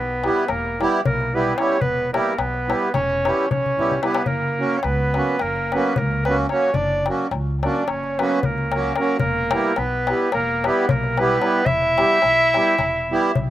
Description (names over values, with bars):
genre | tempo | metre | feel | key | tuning
balkan folk, Balkan wedding band | 219 BPM (eighths) | 9/8 | straight | E dorian sharp4 | A4 = 440 Hz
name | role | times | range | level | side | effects
clear clarinet | melody | 0.0-13.5 s | A#4 to E5 | -22 LUFS | equal | slapback echo
warm trumpet | second line | 0.0-13.5 s | A#3 to E4 | -27 LUFS | right 2 dB | slapback echo
upright bass | bass | 0.0-13.5 s | E1 to C#2 | -27 LUFS | equal | none
accordion | accompaniment | 0.2-13.3 s | F#3 to G4 | -23 LUFS | right 2 dB | none
darbuka | percussion | 0.2-13.5 s | none | -24 LUFS | left 5 dB | none
room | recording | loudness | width
little or no reverb | recorded outdoors, with no room sound | -18 LUFS | side -13 dB against mid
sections
0.0-13.5 A section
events
drum fill 3.6-4.3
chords
0.0 Em; 4.3 F#; 9.2 Em